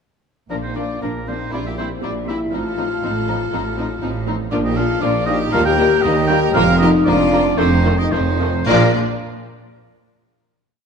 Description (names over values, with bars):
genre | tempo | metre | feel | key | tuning
quick classical-period movement for symphony orchestra | 107-121 BPM | 4/4 | rubato | Bb major | A4 = 439 Hz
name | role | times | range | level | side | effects
warm studio violin section | melody | 0.5-9.0 s | A3 to D5 | -25 LUFS | left 4 dB | none
clear chamber violin section | second line | 0.5-9.0 s | D4 to Bb4 | -28 LUFS | equal | none
warm oboe | second line | 0.5-8.9 s | Bb4 to G5 | -24 LUFS | right 3 dB | none
warm chamber viola section | accompaniment | 0.5-9.0 s | D3 to D4 | -25 LUFS | equal | none
mellow French horn section | sustained chords | 0.5-8.9 s | Bb3 to G4 | -21 LUFS | left 4 dB | none
clear chamber double bass section | bass | 0.5-9.0 s | F1 to Eb2 | -22 LUFS | right 2 dB | none
rich chamber cello section | bass | 0.5-9.0 s | Eb2 to Bb2 | -24 LUFS | right 3 dB | none
room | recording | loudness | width
wet scoring stage reverb, RT60 1.6 s | none | -15 LUFS | side -6 dB against mid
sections
0.5-8.7 A section; 8.7-10.8 final chord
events
none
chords
0.5 Bb; 1.5 C7/Bb; 2.5 F7/A; 4.5 Bb; 5.5 Eb; 6.5 Bb/F; 7.6 F7; 8.7 Bb